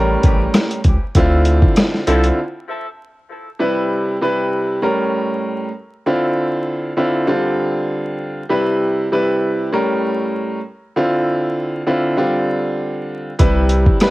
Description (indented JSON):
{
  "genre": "hip hop, boom-bap hip-hop",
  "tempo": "98 BPM",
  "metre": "4/4",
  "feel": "swing 55% on 16ths",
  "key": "C major",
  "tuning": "A4 = 440 Hz",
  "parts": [
    { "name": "clear concert grand piano", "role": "accompaniment", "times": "0.0-14.1 s", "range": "A2 to B4", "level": "-17 LUFS", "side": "equal", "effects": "high-pass filter, low-pass filter, cassette tape" },
    { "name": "saturated sub bass", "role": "bass", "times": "0.0-2.3, 13.4-13.9 s", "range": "A1 to D2", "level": "-16 LUFS", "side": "equal", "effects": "none" },
    { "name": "dusty soul sampler-style drum kit", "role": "drums", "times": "0.2-2.4, 13.4-14.1 s", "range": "hi-hat, kick drum, rim click, snare drum", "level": "-14 LUFS", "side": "equal", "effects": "overdrive, cassette tape" },
    { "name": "clear saxophone section", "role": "stabs", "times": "2.1-2.3 s", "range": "F3 to A4", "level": "-26 LUFS", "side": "left 1 dB", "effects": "high-pass filter, low-pass filter, cassette tape, analog delay" }
  ],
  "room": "light reverb, studio reverb",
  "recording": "home recording on cassette, vinyl crackle",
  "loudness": "-15 LUFS",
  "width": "side -19 dB against mid",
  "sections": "0.0-3.6 A section; 3.6-13.4 B section",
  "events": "break 2.4-3.6",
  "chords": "0.0 A7b9; 1.2 Dm9; 2.4 N.C.; 3.6 Cmaj7; 4.8 A7b9; 6.0 Dm9; 7.3 G7sus4/D; 8.5 Cmaj7; 9.7 A7b9; 10.9 Dm9; 12.2 G7sus4/D; 13.4 Cmaj7",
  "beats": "0.54 | 1.15 1.76 2.38 2.99 | 3.60 4.21 4.83 5.44 | 6.05 6.66 7.27 7.89 | 8.50 9.11 9.72 10.34 | 10.95 11.56 12.17 12.79 | 13.40 14.01"
}